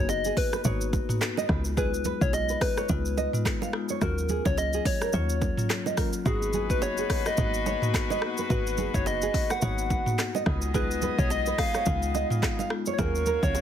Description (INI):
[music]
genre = afrobeats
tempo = 107 BPM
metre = 4/4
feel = swing 58% on 16ths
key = G# dorian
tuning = A4 = 440 Hz
[part]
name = soft struck synth lead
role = melody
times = 0.0-13.6 s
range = G#4 to F#5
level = -31 LUFS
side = left 2 dB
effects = chorus, ping-pong delay
[part]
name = marimba with medium mallets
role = accompaniment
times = 0.0-13.6 s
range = F#3 to F#4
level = -34 LUFS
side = left 5 dB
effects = none
[part]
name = woody log drum bass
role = bass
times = 0.0-13.6 s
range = F#1 to D#2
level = -29 LUFS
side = equal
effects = none
[part]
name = afro-pop drum kit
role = drums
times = 0.1-13.6 s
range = handclaps, hi-hat, kick drum, rim click, shaker, toms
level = -29 LUFS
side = equal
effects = none
[part]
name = bongos and congas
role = percussion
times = 0.1-13.6 s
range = none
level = -36 LUFS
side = right 7 dB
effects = none
[part]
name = nylon-string guitar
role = riff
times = 0.3-13.4 s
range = F#4 to E#5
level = -34 LUFS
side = right 6 dB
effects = ping-pong delay
[part]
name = warm horn section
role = second line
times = 6.3-13.6 s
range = G#3 to D#5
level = -35 LUFS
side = left 3 dB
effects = none
[sound]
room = light reverb, studio ambience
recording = heavily compressed radio sound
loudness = -24 LUFS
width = side -10 dB against mid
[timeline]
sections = 0.0-13.6 A section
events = none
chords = 0.0 G#m7; 1.5 C#7; 4.0 D#m7; 6.3 G#m7; 10.5 C#7; 13.0 D#m7